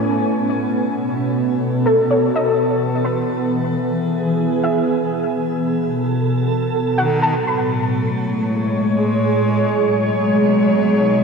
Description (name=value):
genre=ambient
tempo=free time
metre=none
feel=none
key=A lydian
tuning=A4 = 445 Hz
part: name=glassy FM pad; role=sustained chords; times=0.0-11.2 s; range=A2 to G#5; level=-17 LUFS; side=equal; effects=ensemble chorus, built-in reverb, shimmer reverb
part: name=soft round pluck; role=arpeggios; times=0.0-8.2 s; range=A4 to B5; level=-23 LUFS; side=left 1 dB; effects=ensemble chorus, shimmer reverb, ping-pong delay
part: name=rich cello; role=melody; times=7.0-11.2 s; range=D#3 to G#3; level=-25 LUFS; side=equal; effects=shimmer reverb, ping-pong delay
part: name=analog drone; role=drone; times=8.6-11.2 s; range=G#3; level=-22 LUFS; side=right 1 dB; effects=chorus
room=wet lush hall reverb, RT60 2.7 s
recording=none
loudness=-16 LUFS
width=side -5 dB against mid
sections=0.0-7.4 A section; 7.4-11.2 B section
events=fade-in on cello 7.4-11.2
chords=0.3 B7; 2.6 Emaj7; 5.0 B5; 7.4 Amaj7; 9.8 Badd9